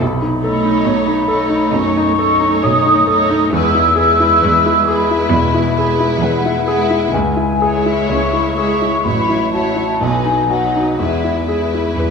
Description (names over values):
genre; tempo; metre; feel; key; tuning
classical, romantic movement for piano and orchestra; 59-71 BPM; 4/4; rubato; E major; A4 = 440 Hz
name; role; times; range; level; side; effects
clear baby grand piano; melody; 0.0-12.1 s; A1 to C#5; -17 LUFS; left 2 dB; none
mellow large flute ensemble; second line; 0.0-12.1 s; E5 to E6; -17 LUFS; equal; none
rich symphonic cello section; bass; 0.0-12.1 s; C#2 to B2; -23 LUFS; right 4 dB; none
rich symphonic violin section; melody; 0.4-12.1 s; B4 to C#5; -26 LUFS; left 3 dB; none
warm symphonic violin section; second line; 0.4-12.1 s; D#4 to E4; -24 LUFS; left 2 dB; none
dark symphonic viola section; accompaniment; 0.4-12.1 s; F#3 to A3; -23 LUFS; right 5 dB; none
room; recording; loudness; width
wet concert hall reverb, RT60 2.5 s; minimal, uncompressed stereo recording; -12 LUFS; side -5 dB against mid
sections
0.0-12.1 A section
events
none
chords
0.0 B9; 3.5 E; 7.1 C#m; 9.1 F#m7/A; 10.0 B; 11.0 E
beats
| 0.01 0.86 1.74 2.65 | 3.54 4.45 5.33 6.21 | 7.12 8.10 9.05 10.02 | 11.01 11.99